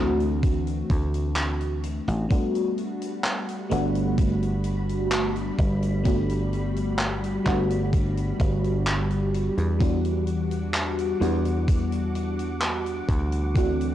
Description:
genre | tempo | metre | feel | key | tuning
vaporwave | 64 BPM | 4/4 | straight | G major | A4 = 439 Hz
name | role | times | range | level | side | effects
FM electric piano with soft pad layer | accompaniment | 0.0-13.9 s | E3 to F#4 | -27 LUFS | equal | phaser, wide subtle chorus, analog delay
dry thumbed slap bass | bass | 0.0-13.9 s | G1 to E2 | -26 LUFS | equal | none
swinging big-band drum kit | drums | 0.2-13.9 s | handclaps, hi-hat | -31 LUFS | equal | none
electronic kick drum | drums | 0.4-13.7 s | none | -23 LUFS | equal | overdrive
soft string machine | sustained chords | 2.8-13.9 s | G3 to D6 | -33 LUFS | equal | ensemble chorus, vintage 12-bit sampler grit
room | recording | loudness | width
small room ambience | dry, gritty hardware recording, cassette tape | -22 LUFS | side -12 dB against mid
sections
0.0-13.9 A section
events
none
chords
0.0 D7; 2.3 Gmaj7; 9.8 Em9

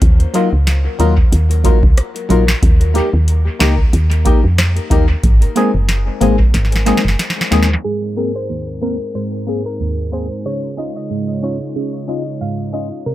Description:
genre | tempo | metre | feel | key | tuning
dancehall | 92 BPM | 4/4 | swing 56% on 16ths | unclear | A4 = 440 Hz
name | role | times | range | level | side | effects
woody FM bass | bass | 0.0-7.8 s | Gb1 to F2 | -14 LUFS | equal | none
booming analog drum machine | drums | 0.0-7.9 s | hi-hat, kick drum, rim click, snare drum | -14 LUFS | equal | none
percussive organ stab | accompaniment | 0.3-13.1 s | Eb2 to Bb4 | -20 LUFS | right 1 dB | chorus, phaser
nylon-string guitar | arpeggios | 0.3-7.7 s | Gb3 to Bb4 | -21 LUFS | left 7 dB | dub echo
soft round pluck | melody | 7.8-13.1 s | Ab4 to F5 | -25 LUFS | left 1 dB | chorus, dub echo
warm analog pad | sustained chords | 7.8-13.1 s | Ab2 to Gb5 | -26 LUFS | equal | chorus, sidechain pumping
room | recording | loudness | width
little or no reverb | echo-heavy mix, low-pass filter | -13 LUFS | side -15 dB against mid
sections
0.0-7.8 A section; 7.8-13.1 B section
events
drum fill 6.5-7.8; filter sweep 7.8-13.1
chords
0.0 Ebmadd9; 2.6 Eb; 5.2 Abadd9; 10.5 Dbadd9

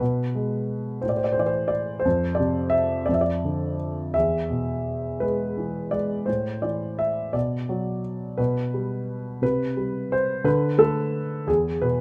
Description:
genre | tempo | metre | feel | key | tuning
classical, lyrical solo piano | 58 BPM (dotted quarters) | 6/8 | rubato | A minor | A4 = 440 Hz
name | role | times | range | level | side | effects
dark grand piano | solo | 0.0-12.0 s | E2 to E5 | -25 LUFS | equal | none
room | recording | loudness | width
light reverb | none | -25 LUFS | mono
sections
0.0-12.0 A section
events
none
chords
0.0 G#m/B; 1.0 A5; 2.1 F5; 3.1 Dm/F; 4.1 E; 6.3 A5; 7.3 Bm; 8.4 G/B; 9.4 C5; 10.5 D5; 11.5 E5

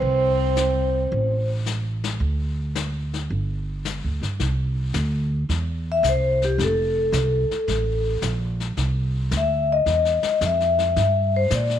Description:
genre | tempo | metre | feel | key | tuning
jazz, small-group swing and bop | 110 BPM | 4/4 | swing 69% on 8ths | C mixolydian | A4 = 440 Hz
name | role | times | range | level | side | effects
vibraphone with medium mallets | melody | 0.0-1.5, 5.9-11.8 s | G4 to E5 | -21 LUFS | left 3 dB | none
breathy tenor saxophone | second line | 0.0-1.5 s | C4 | -27 LUFS | right 13 dB | none
upright bass | bass | 0.0-11.8 s | F1 to Bb2 | -23 LUFS | right 1 dB | none
vintage brush drum kit | drums | 0.0-11.8 s | brushed snare drum, hi-hat, snare drum | -32 LUFS | left 9 dB | none
room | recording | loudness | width
small room ambience | 1960s-style stereo with parts hard left and right | -20 LUFS | side -10 dB against mid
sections
0.0-4.4 A section; 4.4-11.8 B section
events
vibraphone solo 4.4-11.8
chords
0.0 N.C.; 3.3 G5; 4.4 C; 6.6 F; 8.8 C; 11.0 Gm

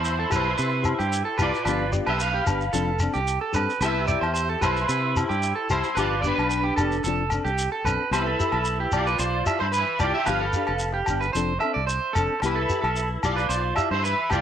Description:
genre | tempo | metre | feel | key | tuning
highlife guitar band | 112 BPM | 4/4 | straight | C major | A4 = 441 Hz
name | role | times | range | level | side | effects
electric guitar at the edge of break-up | melody | 0.0-14.4 s | D4 to F5 | -27 LUFS | equal | ensemble chorus, plate reverb
electric guitar at the edge of break-up | arpeggios | 0.0-14.4 s | G4 to E5 | -27 LUFS | right 5 dB | plate reverb
fingered electric bass | bass | 0.0-14.4 s | F1 to C3 | -28 LUFS | equal | none
shekere | percussion | 0.0-14.4 s | none | -30 LUFS | equal | none
nylon-string guitar | accompaniment | 0.3-14.4 s | F3 to A4 | -31 LUFS | left 8 dB | plate reverb
agogo bells | percussion | 0.3-14.4 s | none | -31 LUFS | left 3 dB | none
room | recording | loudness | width
moderate studio reverb, RT60 0.8 s | none | -22 LUFS | side -9 dB against mid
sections
0.0-8.1 A section; 8.1-14.4 B section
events
none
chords
0.0 Cmaj7; 1.7 G7; 2.7 F6; 3.8 Cmaj7; 6.0 G7; 7.0 F6; 8.1 Cmaj7; 10.3 G7; 11.3 F6; 12.4 Cmaj7

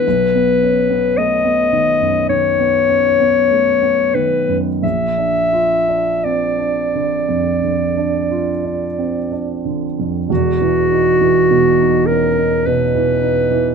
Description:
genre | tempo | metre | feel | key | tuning
classical, impressionist duo for clarinet and grand piano | 42-55 BPM | 4/4 | rubato | unclear | A4 = 440 Hz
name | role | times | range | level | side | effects
mellow clarinet | melody | 0.0-13.7 s | F#4 to E5 | -15 LUFS | left 3 dB | none
dark baby grand piano | accompaniment | 0.0-13.7 s | E1 to E#4 | -18 LUFS | right 4 dB | none
room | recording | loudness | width
light reverb | minimal, uncompressed stereo recording | -13 LUFS | side -6 dB against mid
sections
0.0-10.3 A section; 10.3-13.7 B section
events
none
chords
0.1 B9; 4.8 A#; 10.3 Esus2

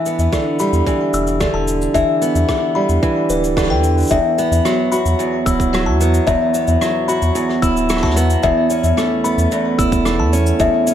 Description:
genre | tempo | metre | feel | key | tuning
folktronica | 111 BPM | 4/4 | straight | E dorian | A4 = 440 Hz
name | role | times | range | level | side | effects
picked steel-string acoustic guitar | arpeggios | 0.0-10.9 s | E2 to F#4 | -17 LUFS | right 2 dB | vintage 12-bit sampler grit, ping-pong delay
cabasa and rim click | drums | 0.1-10.9 s | none | -26 LUFS | equal | none
warm sub bass | bass | 0.2-10.7 s | D1 to E2 | -18 LUFS | right 1 dB | tube saturation
electronic kick drum | drums | 0.3-10.7 s | none | -21 LUFS | right 1 dB | none
music box | second line | 0.6-10.7 s | B4 to E6 | -20 LUFS | left 6 dB | ping-pong delay
room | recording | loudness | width
moderate plate reverb, RT60 1.4 s, small room ambience | dreamy mix soaked in reverb | -14 LUFS | side -10 dB against mid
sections
0.0-4.1 A section; 4.1-10.9 B section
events
band accent 3.6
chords
0.0 G/E; 4.1 Esus2; 8.4 Aadd9/E

